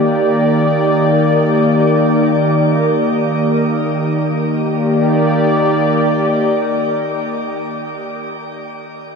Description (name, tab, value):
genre	ambient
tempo	free time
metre	none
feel	none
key	Eb major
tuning	A4 = 439 Hz
part	warm analog pad	sustained chords	0.0-8.0 s	Eb3 to D5	-13 LUFS	equal	chorus
part	handpan	arpeggios	4.3-7.6 s	none	barely audible	none	none
room	wet shimmer reverb, RT60 8.6 s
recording	none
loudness	-12 LUFS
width	side -5 dB against mid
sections	0.0-4.3 A section; 4.3-8.1 B section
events	none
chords	0.0 Ebmaj7